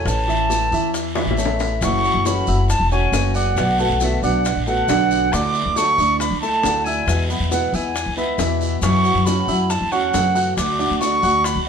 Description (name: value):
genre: latin, Cuban son and guajira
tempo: 137 BPM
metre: 4/4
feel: straight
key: unclear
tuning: A4 = 443 Hz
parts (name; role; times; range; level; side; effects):
- silver concert flute; melody; 0.0-11.7 s; E5 to D6; -21 LUFS; right 2 dB; none
- picked acoustic archtop guitar; accompaniment; 0.0-11.5 s; B2 to F#4; -26 LUFS; left 3 dB; none
- warm baby grand piano; arpeggios; 0.0-11.6 s; D3 to F#6; -25 LUFS; right 3 dB; none
- upright bass; bass; 0.0-11.7 s; E1 to F#2; -22 LUFS; left 1 dB; none
- bongos; percussion; 0.1-11.7 s; none; -29 LUFS; left 5 dB; none
- guiro; percussion; 0.1-11.7 s; none; -32 LUFS; right 2 dB; none
- maracas; percussion; 0.1-11.7 s; none; -33 LUFS; left 4 dB; none
room: moderate stone room reverb, RT60 1.1 s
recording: band playing live in one room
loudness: -16 LUFS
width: side -7 dB against mid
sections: 0.0-1.8 A section; 1.8-11.7 B section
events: drum fill 1.2-1.8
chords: 0.1 A; 1.8 F#m7; 3.6 Bm7; 5.3 Dadd9; 7.1 E; 8.8 F#m7; 10.6 D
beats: | 0.07 0.50 0.94 1.38 | 1.82 2.26 2.69 3.13 | 3.57 4.01 4.45 4.89 | 5.33 5.76 6.20 6.64 | 7.08 7.51 7.95 8.39 | 8.83 9.27 9.70 10.14 | 10.58 11.01 11.45